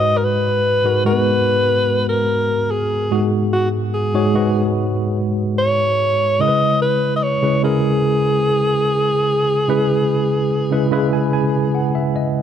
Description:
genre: R&B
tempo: 73 BPM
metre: 4/4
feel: straight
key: G# minor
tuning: A4 = 442 Hz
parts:
  - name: clear alto saxophone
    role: melody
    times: 0.0-12.1 s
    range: F#4 to D#5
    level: -18 LUFS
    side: left 1 dB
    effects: digital delay
  - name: tine electric piano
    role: accompaniment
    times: 0.0-12.4 s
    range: G#2 to B5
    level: -18 LUFS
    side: equal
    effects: medium stereo tremolo
room: light reverb, studio ambience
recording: none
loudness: -15 LUFS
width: side -9 dB against mid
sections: 0.0-12.4 A section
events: tine electric piano fill 10.5-12.4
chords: 0.0 G#m7; 6.4 C#m7

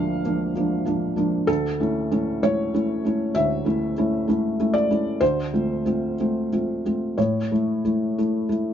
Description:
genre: neoclassical minimalist piano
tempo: 59-65 BPM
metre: 4/4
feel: rubato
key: unclear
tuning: A4 = 441 Hz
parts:
  - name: felt-muted upright piano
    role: solo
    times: 0.0-8.7 s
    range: D2 to F5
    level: -21 LUFS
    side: equal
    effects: none
room: light reverb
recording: nothing above 7.5 kHz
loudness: -21 LUFS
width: side -9 dB against mid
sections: 0.0-8.7 A section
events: none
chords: 0.0 Bb/D; 1.5 A/D; 5.2 F/D; 7.2 A

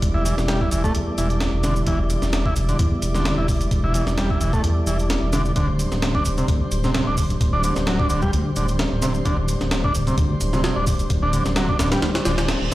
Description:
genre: breakbeat, breaks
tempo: 130 BPM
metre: 4/4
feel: swing 54% on 16ths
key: unclear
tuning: A4 = 441 Hz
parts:
  - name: mellow tonewheel organ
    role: sustained chords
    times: 0.0-12.7 s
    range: G3 to D5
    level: -27 LUFS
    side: right 1 dB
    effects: slow rotary speaker, sidechain pumping
  - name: dark detuned saw bass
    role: bass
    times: 0.0-12.7 s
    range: D1 to E2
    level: -23 LUFS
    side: equal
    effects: none
  - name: breakbeat sampler-style drum kit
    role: drums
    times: 0.0-12.7 s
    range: hi-hat, kick drum, snare drum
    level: -23 LUFS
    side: equal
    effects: none
  - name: shaker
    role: drums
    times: 0.0-12.7 s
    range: none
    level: -36 LUFS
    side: right 2 dB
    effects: none
  - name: combo organ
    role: riff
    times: 0.1-12.7 s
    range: C3 to E4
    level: -25 LUFS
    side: equal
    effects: low-pass filter, digital delay
  - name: reverse cymbal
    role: sound effects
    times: 12.2-12.7 s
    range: none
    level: -30 LUFS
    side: right 3 dB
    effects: none
room: light reverb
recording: played on a big sound system in a bare room, large studio reverb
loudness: -18 LUFS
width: side -16 dB against mid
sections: 0.0-12.7 A section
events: reverse cymbal 12.2-12.7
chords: 0.0 Em7; 5.6 D7sus4

